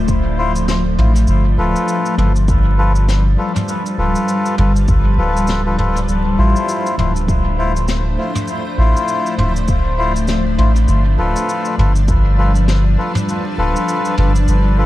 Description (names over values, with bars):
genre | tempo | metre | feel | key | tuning
ambient dub | 100 BPM | 4/4 | swing 59% on 16ths | unclear | A4 = 440 Hz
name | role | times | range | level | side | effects
granular cloud pad | sustained chords | 0.0-14.9 s | F3 to D5 | -20 LUFS | left 1 dB | built-in reverb
round analog bass | bass | 0.0-14.9 s | D1 to A1 | -14 LUFS | equal | none
electronic kick drum | drums | 0.1-12.2 s | none | -18 LUFS | equal | none
vintage brush drum kit | drums | 0.1-14.6 s | cabasa, snare drum, toms | -25 LUFS | equal | dub echo
melodica | stabs | 0.4-14.9 s | E4 to C5 | -20 LUFS | left 2 dB | dub echo
room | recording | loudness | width
small room ambience | echo-heavy mix, vinyl crackle | -13 LUFS | side -15 dB against mid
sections
0.0-14.9 A section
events
kick drops out 13.3-14.9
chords
0.0 Dm7; 1.3 G7; 6.1 Dm7; 10.9 G7